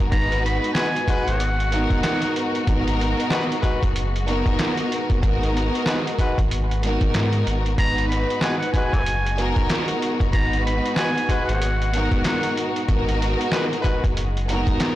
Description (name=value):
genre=hip hop, boom-bap hip-hop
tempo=94 BPM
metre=4/4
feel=swing 60% on 16ths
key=G# minor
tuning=A4 = 440 Hz
part: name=warm studio string section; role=accompaniment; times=0.0-15.0 s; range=G#2 to B4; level=-25 LUFS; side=equal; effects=high-pass filter, low-pass filter
part: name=warm studio string section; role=sustained chords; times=0.0-15.0 s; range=B2 to F#4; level=-32 LUFS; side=left 3 dB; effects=high-pass filter, low-pass filter
part: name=sub bass with octave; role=bass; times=0.0-14.8 s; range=F#1 to G#2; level=-24 LUFS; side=equal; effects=transformer saturation
part: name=trip hop sampler-style drum kit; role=drums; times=0.0-15.0 s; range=handclaps, hi-hat, kick drum, snare drum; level=-24 LUFS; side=equal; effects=none
part: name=trumpet with straight mute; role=melody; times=0.1-2.3, 7.8-12.5 s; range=F#5 to B5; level=-27 LUFS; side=equal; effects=high-pass filter, low-pass filter, tape echo
part: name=warm horn section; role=stabs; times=0.8-14.0 s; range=G#3 to B4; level=-30 LUFS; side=left 2 dB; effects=high-pass filter, low-pass filter, tape echo
room=light reverb, studio reverb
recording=blown-out, overdriven recording, overdrive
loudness=-19 LUFS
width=side -14 dB against mid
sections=0.0-15.0 A section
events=none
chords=0.0 G#m7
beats=| 0.12 0.76 1.40 2.04 | 2.67 3.31 3.95 4.59 | 5.23 5.87 6.50 7.14 | 7.78 8.42 9.06 9.70 | 10.33 10.97 11.61 12.25 | 12.89 13.53 14.16 14.80